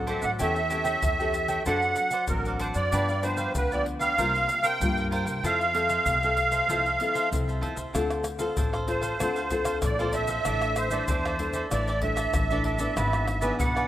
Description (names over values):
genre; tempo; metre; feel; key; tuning
samba and choro; 96 BPM; 4/4; straight; F major, D minor from 7.9 s; A4 = 435 Hz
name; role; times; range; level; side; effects
cavaquinho; accompaniment; 0.0-13.9 s; D4 to G5; -34 LUFS; right 2 dB; none
nylon-string guitar; accompaniment; 0.0-13.9 s; G2 to A4; -31 LUFS; left 2 dB; none
upright bass; bass; 0.0-13.9 s; G#1 to G2; -32 LUFS; equal; none
musette accordion; melody; 0.1-13.9 s; Bb4 to G5; -26 LUFS; right 2 dB; none
pandeiro, tube shaker, surdo and tamborim; percussion; 0.1-13.9 s; none; -32 LUFS; left 1 dB; none
room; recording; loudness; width
light reverb, small room ambience; rough home demo mix; -24 LUFS; side -13 dB against mid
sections
0.0-7.9 A section; 7.9-13.9 B section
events
accordion solo 7.9-13.9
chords
0.4 A7/E; 1.7 D7/F#; 2.9 G7; 4.2 C7sus4; 5.4 Fmaj7; 7.9 Dm7; 10.5 Asus4; 13.0 E7/G#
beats
| 0.40 1.03 1.66 2.29 | 2.92 3.55 4.18 4.81 | 5.43 6.06 6.69 7.32 | 7.95 8.58 9.21 9.83 | 10.46 11.09 11.72 12.34 | 12.97 13.60